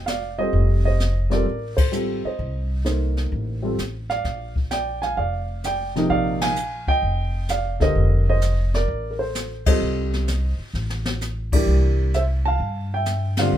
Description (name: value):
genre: jazz piano trio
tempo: 129 BPM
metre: 4/4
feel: swing 68% on 8ths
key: F mixolydian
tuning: A4 = 440 Hz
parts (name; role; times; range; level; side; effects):
- dark baby grand piano; melody; 0.0-13.6 s; C3 to A5; -24 LUFS; right 1 dB; none
- upright bass; bass; 0.0-13.6 s; F1 to G2; -23 LUFS; equal; none
- jazz brush drum kit; drums; 0.1-13.6 s; brushed snare drum, crash cymbal, hi-hat, kick drum, ride cymbal, snare drum; -25 LUFS; left 1 dB; none
room: light reverb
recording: minimal, uncompressed stereo recording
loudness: -20 LUFS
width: side -11 dB against mid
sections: 0.0-13.6 A section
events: band accent 1.7, 6.3, 9.6, 13.3; drum fill 10.7-11.2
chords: 0.0 F9; 11.7 C9